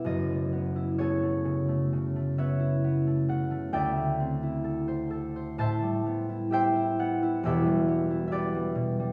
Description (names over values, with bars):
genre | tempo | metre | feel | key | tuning
classical, solo harp piece | 66 BPM | 4/4 | rubato | unclear | A4 = 439 Hz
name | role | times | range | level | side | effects
concert harp | solo | 0.0-9.1 s | E1 to A5 | -28 LUFS | equal | none
room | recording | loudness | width
wet recital hall reverb, RT60 1.5 s | small room ambience | -28 LUFS | mono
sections
0.0-9.1 A section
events
none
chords
0.1 F#m11; 3.7 D9sus4; 5.6 Am9; 7.4 Em7